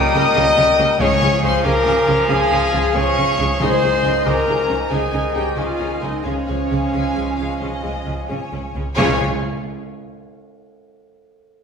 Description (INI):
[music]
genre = cinematic, heroic adventure film score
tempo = 92 BPM (dotted quarters)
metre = 12/8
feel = straight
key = Db lydian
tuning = A4 = 437 Hz
[part]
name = warm studio violin section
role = melody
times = 0.0-9.2 s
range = Db5 to Eb6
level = -26 LUFS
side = left 2 dB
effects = none
[part]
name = flute section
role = second line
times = 0.0-9.2 s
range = F5 to Bb5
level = -30 LUFS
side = left 2 dB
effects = none
[part]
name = warm clarinet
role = second line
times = 0.0-9.2 s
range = Db5 to G5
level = -28 LUFS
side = left 1 dB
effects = none
[part]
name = warm cor anglais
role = second line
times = 0.0-9.2 s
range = Ab3 to Bb4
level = -29 LUFS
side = right 2 dB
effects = none
[part]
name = mellow French horn section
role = sustained chords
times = 0.0-9.2 s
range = Db4 to Eb5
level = -21 LUFS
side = left 3 dB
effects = none
[part]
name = warm trombone section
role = sustained chords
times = 0.0-9.2 s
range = Ab2 to G3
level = -27 LUFS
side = right 1 dB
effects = none
[part]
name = mellow trumpet section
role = stabs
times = 0.0-9.2 s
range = Db4 to Eb5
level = -23 LUFS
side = equal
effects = none
[part]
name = clear symphonic viola section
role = accompaniment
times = 0.1-9.2 s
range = Bb3 to Bb4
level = -29 LUFS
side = left 2 dB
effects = none
[part]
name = clear symphonic double bass section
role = bass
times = 0.1-9.2 s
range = Db2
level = -25 LUFS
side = right 2 dB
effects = none
[part]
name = rich symphonic cello section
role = bass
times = 0.1-9.2 s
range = Db3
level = -26 LUFS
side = right 3 dB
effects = none
[part]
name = warm symphonic violin section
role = second line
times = 0.2-9.2 s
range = Db5 to Ab5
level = -32 LUFS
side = left 4 dB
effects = none
[part]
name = timpani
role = percussion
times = 1.0-4.2, 9.0-9.2 s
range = Db3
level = -26 LUFS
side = equal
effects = none
[sound]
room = wet recital hall reverb, RT60 1.6 s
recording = recorded in a church or concert hall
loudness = -16 LUFS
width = side -6 dB against mid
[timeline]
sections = 0.0-9.0 A section; 9.0-11.6 B section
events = none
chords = 0.0 Eb/Db; 1.0 Db; 3.6 Ab/Db; 6.3 Db